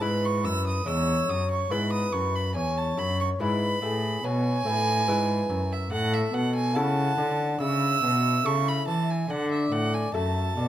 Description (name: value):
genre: classical, baroque-style sonata movement with continuo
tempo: 71 BPM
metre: 4/4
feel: straight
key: E major, A major from 5.9 s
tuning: A4 = 440 Hz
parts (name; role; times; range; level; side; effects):
- dark trumpet; melody; 0.0-10.7 s; G#4 to F#5; -32 LUFS; left 5 dB; none
- warm violin; second line; 0.0-10.7 s; E5 to E6; -29 LUFS; right 4 dB; none
- lute; accompaniment; 0.0-10.7 s; E2 to B4; -32 LUFS; left 1 dB; none
- rich cello; bass; 0.0-10.7 s; E2 to E3; -27 LUFS; equal; none
room: light reverb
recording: none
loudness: -23 LUFS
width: side -12 dB against mid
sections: 0.0-10.7 A section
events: none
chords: 0.0 E; 5.9 A; 9.3 D